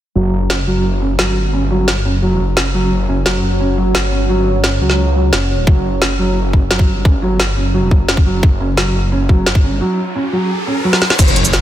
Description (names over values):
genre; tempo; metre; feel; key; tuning
dark technical drum and bass; 174 BPM; 4/4; straight; unclear; A4 = 440 Hz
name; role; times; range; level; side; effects
deep dark ambient pad; sustained chords; 2.8-11.6 s; F#4 to F#5; -25 LUFS; right 2 dB; chorus, built-in reverb, sidechain pumping
felt-muted upright piano; arpeggios; 0.2-11.0 s; F#3 to C#4; -18 LUFS; right 1 dB; sidechain pumping, low-pass filter, digital delay
snarling distorted saw bass; bass; 0.2-11.6 s; F#1 to C#2; -17 LUFS; equal; distortion, tube saturation
drum and bass drum kit; drums; 0.5-11.6 s; crash cymbal, hi-hat, shaker, snare drum; -18 LUFS; equal; none
electronic kick drum; drums; 5.7-11.3 s; none; -10 LUFS; equal; none
riser and impact; sound effects; 9.8-11.6 s; none; -21 LUFS; equal; none
room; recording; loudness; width
light reverb, digital ambience; dense, heavily limited modern master; -12 LUFS; side -12 dB against mid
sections
0.2-11.2 A section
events
filter sweep on ambient pad 0.2-11.2; filter sweep on felt piano 0.2-11.2; riser 9.8-11.2; break 9.8-11.2; drum fill 10.9; impact 11.2-11.6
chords
0.2 F#5